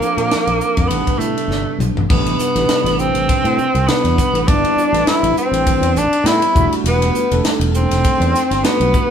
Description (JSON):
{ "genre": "electric jazz fusion", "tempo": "101 BPM", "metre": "4/4", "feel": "swing 55% on 16ths", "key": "A dorian", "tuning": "A4 = 440 Hz", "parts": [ { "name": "breathy tenor saxophone", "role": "melody", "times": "0.0-9.1 s", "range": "A3 to E4", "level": "-18 LUFS", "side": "right 2 dB", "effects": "none" }, { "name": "breathy trombone", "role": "second line", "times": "0.0-9.1 s", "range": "A3 to E4", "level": "-21 LUFS", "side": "left 5 dB", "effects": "none" }, { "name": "bell-like tine electric piano", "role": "accompaniment", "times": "0.0-9.1 s", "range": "C3 to B4", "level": "-23 LUFS", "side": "right 6 dB", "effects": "none" }, { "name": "crisp fusion drum kit", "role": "drums", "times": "0.0-9.1 s", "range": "crash cymbal, hi-hat, kick drum, ride cymbal, snare drum, toms", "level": "-20 LUFS", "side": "left 1 dB", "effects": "none" }, { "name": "fretless electric bass", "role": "bass", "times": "0.2-8.9 s", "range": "E1 to Bb2", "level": "-20 LUFS", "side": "equal", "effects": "none" } ], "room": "moderate stone room reverb, RT60 1.1 s", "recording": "band playing live in one room", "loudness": "-13 LUFS", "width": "side -8 dB against mid", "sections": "0.0-2.1 A section; 2.1-9.1 B section", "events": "drum fill 1.5-2.1", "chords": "0.0 Bbmaj7; 0.9 Am11; 6.6 Em11", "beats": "0.31 0.90 1.50 | 2.10 2.69 3.29 3.88 | 4.48 5.07 5.67 6.26 | 6.86 7.45 8.04 8.64" }